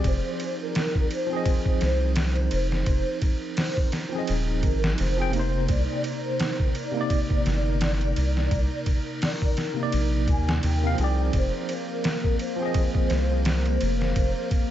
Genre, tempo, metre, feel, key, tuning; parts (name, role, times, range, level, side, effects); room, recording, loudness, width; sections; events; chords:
trip hop; 85 BPM; 4/4; swing 57% on 16ths; F dorian; A4 = 440 Hz
tine electric piano; accompaniment; 0.0-14.7 s; C3 to G5; -30 LUFS; equal; overdrive, fast stereo tremolo, tape echo
warbly tape-like pad; sustained chords; 0.4-14.7 s; Bb3 to Eb4; -35 LUFS; right 2 dB; chorus, built-in reverb
soft dub sub bass; bass; 0.0-14.3 s; Eb1 to Eb2; -24 LUFS; equal
trip hop sampler-style drum kit; drums; 0.0-14.7 s; hi-hat, kick drum, ride cymbal, snare drum; -27 LUFS; equal
bowed-like drone; texture; 0.0-14.7 s; Bb4; -40 LUFS; left 6 dB; built-in reverb
pure breathy sine lead; melody; 0.1-14.5 s; Bb4 to Ab5; -32 LUFS; equal; ensemble chorus, tape echo
digital ambience; nothing above 7.9 kHz; -22 LUFS; side -12 dB against mid
0.0-14.7 A section
0.0 Fm7; 5.7 Cm9; 11.3 Fm7